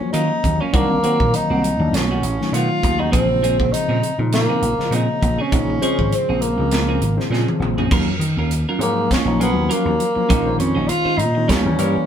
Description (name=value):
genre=electric jazz fusion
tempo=100 BPM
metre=4/4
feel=swing 55% on 16ths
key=Bb minor, Eb minor from 7.9 s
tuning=A4 = 441 Hz
part: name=mellow tenor saxophone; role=melody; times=0.0-12.1 s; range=Bb3 to F4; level=-21 LUFS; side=right 1 dB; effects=none
part: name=barky tine electric piano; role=accompaniment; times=0.0-12.1 s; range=Db3 to C5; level=-23 LUFS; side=left 4 dB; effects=overdrive, phaser
part: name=vintage slap bass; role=bass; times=0.0-12.0 s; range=Ab1 to Eb3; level=-22 LUFS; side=right 1 dB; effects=none
part: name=clean electric guitar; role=stabs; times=0.1-12.0 s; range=Eb3 to C5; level=-25 LUFS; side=right 3 dB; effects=none
part: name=crisp fusion drum kit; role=drums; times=0.1-11.9 s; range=crash cymbal, hi-hat, kick drum, snare drum, toms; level=-22 LUFS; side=right 1 dB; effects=none
room=wet studio reverb, RT60 0.8 s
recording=band playing live in one room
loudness=-16 LUFS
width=side -9 dB against mid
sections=0.0-7.9 A section; 7.9-12.1 B section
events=drum fill 7.3-7.9; tenor saxophone solo 7.9-12.1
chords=0.0 Ebm9; 0.7 Cm7b5; 1.9 B9; 3.1 Bbm9; 7.9 Ebm9; 10.3 Bbm11; 11.5 Eb7b9